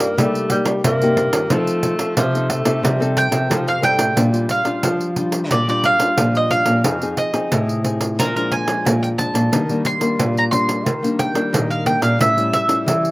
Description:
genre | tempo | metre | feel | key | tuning
samba and choro | 90 BPM | 4/4 | straight | Bb major | A4 = 438 Hz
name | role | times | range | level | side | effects
breathy tenor saxophone | second line | 0.0-4.2 s | F3 to Bb3 | -22 LUFS | equal | none
nylon-string guitar | accompaniment | 0.0-13.1 s | F2 to A4 | -23 LUFS | left 2 dB | none
nylon-string guitar | bass | 0.0-13.1 s | F2 to G3 | -21 LUFS | equal | none
pandeiro | percussion | 0.0-13.1 s | none | -22 LUFS | right 1 dB | none
bowl-back mandolin | melody | 3.2-13.1 s | Bb4 to C6 | -19 LUFS | right 1 dB | none
room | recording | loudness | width
little or no reverb | recorded outdoors, with no room sound | -16 LUFS | side -20 dB against mid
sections
0.0-4.2 A section; 4.2-13.1 B section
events
none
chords
0.0 Cm7; 1.5 F7; 4.2 Bb6; 6.9 Fm7; 8.2 Bb7; 9.5 Ebmaj7; 12.2 A7

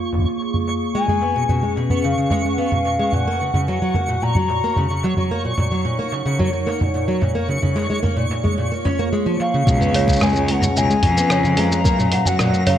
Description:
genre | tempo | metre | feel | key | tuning
folktronica | 110 BPM | 4/4 | straight | Db mixolydian | A4 = 440 Hz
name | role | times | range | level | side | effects
warbly tape-like pad | sustained chords | 0.0-12.8 s | Bb3 to Bb5 | -25 LUFS | equal | chorus, built-in reverb
lo-fi sampler-style drum kit | drums | 0.0-12.8 s | hi-hat, rim click, shaker, toms | -23 LUFS | equal | low-pass filter on perc, small room ambience, low-pass filter on toms, low-pass filter on hats, low-pass filter on snare
twinkling granular texture | texture | 0.0-12.8 s | Bb5 to Db6 | -30 LUFS | right 1 dB | built-in reverb
baroque flute | melody | 0.9-5.0, 9.4-12.8 s | F5 to Bb5 | -23 LUFS | left 3 dB | tape echo
fingerpicked plugged-in steel-string acoustic guitar | arpeggios | 0.9-12.8 s | Bb2 to Db4 | -22 LUFS | equal | none
rich cello | bass | 9.7-12.8 s | Db2 to Gb2 | -20 LUFS | equal | tube saturation
electronic kick drum | drums | 9.7-12.0 s | none | -18 LUFS | equal | overdrive, small room ambience
toy piano | second line | 10.0-12.8 s | Db5 to Ab5 | -27 LUFS | right 6 dB | tape echo
room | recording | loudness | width
light reverb, small room reverb | none | -17 LUFS | side -10 dB against mid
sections
0.0-9.7 A section; 9.7-12.8 B section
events
none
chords
0.0 Bbm7; 0.9 Db7; 3.1 Gb; 5.3 Ebm7; 7.5 Bbm7; 9.7 Db7; 11.9 Gbmaj7

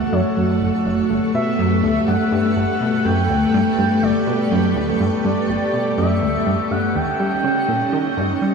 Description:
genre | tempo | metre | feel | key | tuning
ambient, sequencer-driven space music | 123 BPM | 4/4 | straight | unclear | A4 = 441 Hz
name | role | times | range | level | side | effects
expressive synth lead | melody | 0.0-8.5 s | C#5 to G5 | -23 LUFS | right 1 dB | chorus, phaser, vintage 12-bit sampler grit, analog delay
string machine, full ensemble | sustained chords | 0.0-8.5 s | A3 to D#5 | -19 LUFS | equal | ensemble chorus
plucky analog bass | riff | 0.0-8.5 s | F#1 to G3 | -21 LUFS | right 1 dB | analog delay
twinkling granular texture | texture | 0.0-8.5 s | C#6 | -36 LUFS | left 2 dB | built-in reverb
room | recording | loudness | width
wet shimmer reverb, RT60 7.9 s | small room ambience | -16 LUFS | side -5 dB against mid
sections
0.0-8.5 A section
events
fade-in on synth texture 0.0-8.5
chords
0.0 F#m; 1.1 Gadd9; 7.0 D#7

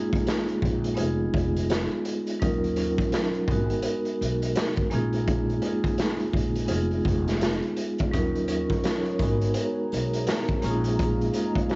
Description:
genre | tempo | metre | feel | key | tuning
hip hop, boom-bap hip-hop | 84 BPM | 4/4 | swing 59% on 16ths | unclear | A4 = 440 Hz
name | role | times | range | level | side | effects
vibraphone with medium hard mallets | accompaniment | 0.0-11.8 s | Gb3 to Bb4 | -26 LUFS | equal | high-pass filter, low-pass filter, cassette tape
raw garage drum kit | drums | 0.1-11.8 s | hi-hat, kick drum, snare drum | -28 LUFS | equal | none
upright bass | bass | 0.6-11.3 s | F1 to Eb2 | -29 LUFS | equal | none
dark analog pad | sustained chords | 8.5-11.8 s | Cb4 to Db6 | -36 LUFS | equal | chorus, high-pass filter, low-pass filter, cassette tape
sleigh bells | percussion | 8.1-11.8 s | none | -49 LUFS | left 3 dB | none
room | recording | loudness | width
light reverb | home recording on cassette, vinyl crackle, nothing above 7.7 kHz | -23 LUFS | side -26 dB against mid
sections
0.0-11.8 A section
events
none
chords
0.0 Bb7sus4; 1.0 Fm7b5; 2.4 Ebm7; 3.5 Abm9; 4.9 Bb7sus4; 6.7 Fm7b5; 8.1 Ebm7; 9.2 Abm9; 10.6 Bb7sus4

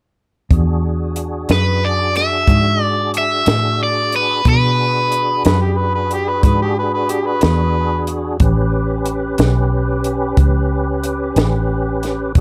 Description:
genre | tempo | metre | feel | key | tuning
slow blues | 61 BPM (dotted quarters) | 12/8 | straight | E mixolydian | A4 = 440 Hz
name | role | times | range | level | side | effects
tonewheel organ | sustained chords | 0.5-12.4 s | C#4 to B4 | -25 LUFS | equal | slow rotary speaker, overdrive, chorus vibrato
vintage muted fingered electric bass | bass | 0.5-12.4 s | E1 to B2 | -20 LUFS | equal | none
compact cocktail drum kit | drums | 0.5-12.4 s | hi-hat, kick drum, snare drum | -19 LUFS | equal | none
cranked stack guitar | melody | 1.5-5.4 s | B4 to E5 | -19 LUFS | equal | overdrive
overdriven harmonica | second line | 5.5-8.1 s | G4 to B4 | -22 LUFS | equal | none
room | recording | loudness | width
light reverb, small room ambience | none | -16 LUFS | mono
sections
0.5-12.4 A section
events
none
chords
0.5 E9; 8.4 A9

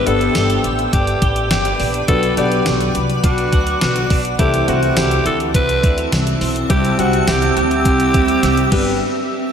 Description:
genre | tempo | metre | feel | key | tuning
1980s-style pop | 104 BPM | 4/4 | straight | G major | A4 = 440 Hz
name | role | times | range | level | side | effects
raspy alto saxophone | melody | 0.0-9.0 s | F#4 to B4 | -20 LUFS | equal | diffuse ambient delay
warm baby grand piano | accompaniment | 0.0-9.0 s | G3 to F#5 | -21 LUFS | left 3 dB | analog chorus
granular cloud pad | sustained chords | 0.0-9.0 s | C4 to E6 | -22 LUFS | right 1 dB | built-in reverb
twelve-string electric guitar | riff | 0.0-9.0 s | E3 to G4 | -24 LUFS | right 3 dB | ensemble chorus, diffuse ambient delay
upright bass | bass | 0.1-9.0 s | G1 to D2 | -21 LUFS | equal | none
clean 12-bit digital drum machine | drums | 0.1-8.9 s | crash cymbal, hi-hat, kick drum, snare drum, tambourine | -20 LUFS | equal | none
room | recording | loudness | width
wet lush hall reverb, RT60 1.8 s | dreamy mix soaked in reverb | -14 LUFS | side -8 dB against mid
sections
0.0-9.0 A section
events
drum fill 8.4-9.0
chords
0.0 G; 2.1 Bm; 4.4 Am/C; 6.7 C; 8.7 G; 9.0 N.C.

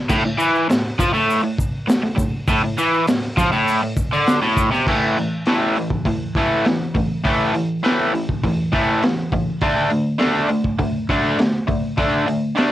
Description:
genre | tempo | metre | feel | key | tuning
garage rock duo or trio | 101 BPM | 4/4 | straight | unclear | A4 = 440 Hz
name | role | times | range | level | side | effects
crunchy overdriven guitar | riff | 0.0-12.7 s | A2 to D4 | -18 LUFS | equal | cassette tape
crunchy breakbeat drum kit | drums | 0.1-12.7 s | crash cymbal, hi-hat, kick drum, snare drum | -22 LUFS | equal | cassette tape
egg shaker | percussion | 0.1-4.8 s | none | -40 LUFS | left 3 dB | none
room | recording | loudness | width
light reverb | home recording on cassette | -16 LUFS | side -13 dB against mid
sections
0.0-4.9 A section; 4.9-12.7 B section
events
none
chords
0.0 N.C.; 4.9 A5; 9.6 D5

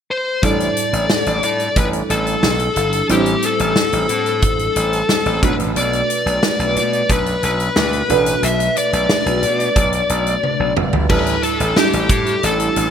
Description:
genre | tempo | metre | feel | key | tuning
1980s-style pop | 90 BPM | 4/4 | straight | unclear | A4 = 436 Hz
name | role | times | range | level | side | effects
fuzz lead guitar | melody | 0.1-12.9 s | G4 to E5 | -18 LUFS | left 2 dB | distortion, shimmer reverb, ping-pong delay
FM electric piano with soft pad layer | accompaniment | 0.4-12.9 s | A2 to C5 | -22 LUFS | right 2 dB | chorus, phaser, shimmer reverb
gritty slap bass | bass | 0.4-12.9 s | F#1 to B2 | -21 LUFS | equal | overdrive
big rock drum kit | drums | 0.4-12.9 s | crash cymbal, hi-hat, kick drum, snare drum, toms | -20 LUFS | equal | none
room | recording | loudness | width
moderate plate reverb, RT60 2.9 s | bright 1980s-style digital production | -14 LUFS | side -8 dB against mid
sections
0.4-11.1 A section; 11.1-12.9 B section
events
drum fill 10.4-11.1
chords
0.4 A7sus4; 5.4 Bm7; 11.1 A7sus4

